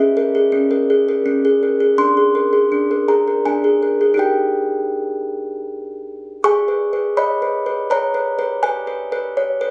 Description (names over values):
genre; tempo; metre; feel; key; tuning
classical, lullaby for music box; 82 BPM; 3/4; straight; G# minor; A4 = 439 Hz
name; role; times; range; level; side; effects
music box; solo; 0.0-9.7 s; C#4 to C#6; -15 LUFS; equal; none
room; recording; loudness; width
light reverb; recorded on a phone in the room, studio reverb, compression; -15 LUFS; side -29 dB against mid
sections
0.0-6.4 A section; 6.4-9.7 B section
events
none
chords
0.0 A#m7b5/C#; 2.0 A#7/D; 4.2 D#; 6.4 G#m; 8.6 G#m/B